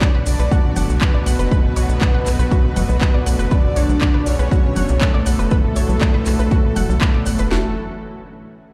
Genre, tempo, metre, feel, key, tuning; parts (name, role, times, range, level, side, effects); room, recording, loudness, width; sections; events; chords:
melodic techno; 120 BPM; 4/4; straight; A4 = 441 Hz
fat analog lead; melody; 0.0-7.7 s; A3 to D4; -26 LUFS; equal; lush chorus, sidechain pumping, digital delay
soft supersaw; second line; 0.0-7.7 s; A4 to D5; -33 LUFS; equal; sidechain pumping, tape echo
lush unison pad; sustained chords; 0.0-7.7 s; D3 to F#4; -30 LUFS; equal; chorus, sidechain pumping
unison pluck; arpeggios; 0.0-7.7 s; F#4 to F#6; -32 LUFS; equal; sidechain pumping, tape echo
house drum kit; drums; 0.0-7.6 s; kick drum, snare drum; -19 LUFS; equal; overdrive, studio ambience
house drum kit; drums; 0.0-7.4 s; congas, handclaps, hi-hat; -28 LUFS; equal; overdrive, studio ambience
cabasa; percussion; 0.0-7.5 s; -39 LUFS; equal
tight sequencer bass; bass; 0.1-7.7 s; F#1 to B1; -21 LUFS; equal; tube saturation, sidechain pumping
digital ambience; played on a big sound system in a bare room, large studio reverb; -17 LUFS; mono
0.0-7.5 A section; 7.5-8.7 B section
drop 0.0-7.5
0.0 Bm7; 7.5 F#m7